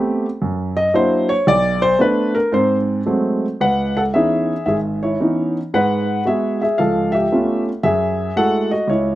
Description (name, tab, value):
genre	solo jazz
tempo	114 BPM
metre	4/4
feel	swing 66% on 8ths, rubato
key	C# minor from 3.6 s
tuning	A4 = 440 Hz
part	warm concert grand piano	solo	0.0-9.2 s	G#1 to F#5	-15 LUFS	equal	none
room	little or no reverb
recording	recorded outdoors, with no room sound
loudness	-15 LUFS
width	side -15 dB against mid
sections	0.0-3.6 A section; 3.6-9.2 B section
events	grand piano solo 0.0-3.6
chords	0.4 F#7b13; 1.5 Bm7; 2.5 G#7b9; 3.6 C#m9; 5.7 G#m7; 6.8 C#7alt; 7.8 F#m9